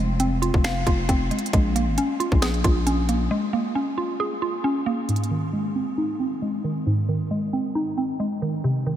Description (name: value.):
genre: hip hop, trap.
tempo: 135 BPM.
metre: 4/4.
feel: half-time.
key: Ab major.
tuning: A4 = 441 Hz.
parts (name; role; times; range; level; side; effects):
mallet-like synth pluck; accompaniment; 0.0-9.0 s; Ab2 to F5; -23 LUFS; right 1 dB; chorus, low-pass filter.
growling 808-style bass; bass; 0.0-3.3 s; F1 to Bb1; -24 LUFS; equal; none.
trap drum kit; drums; 0.2-5.3 s; finger snaps, hi-hat, kick drum, snare drum; -25 LUFS; equal; none.
room: moderate huge ambient reverb, RT60 7.9 s.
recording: dreamy mix soaked in reverb.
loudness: -21 LUFS.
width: side -11 dB against mid.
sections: 0.0-5.1 A section; 5.1-9.0 B section.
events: break 3.3-5.1; filter sweep on synth pluck 5.1-9.0.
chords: 0.0 Fm; 1.5 Bbm7; 5.1 Ab.